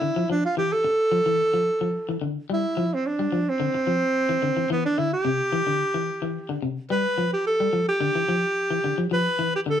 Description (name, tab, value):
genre	afrobeat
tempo	109 BPM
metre	4/4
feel	straight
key	unclear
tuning	A4 = 440 Hz
part	breathy alto saxophone	melody	0.0-9.8 s	B3 to B4	-23 LUFS	right 1 dB	none
part	electric guitar at the edge of break-up	arpeggios	0.0-9.8 s	C3 to G3	-27 LUFS	left 3 dB	none
room	moderate studio reverb, RT60 0.7 s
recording	band playing live in one room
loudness	-21 LUFS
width	side -9 dB against mid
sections	0.0-9.8 A section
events	none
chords	0.0 N.C.; 2.5 Cadd9; 6.9 G5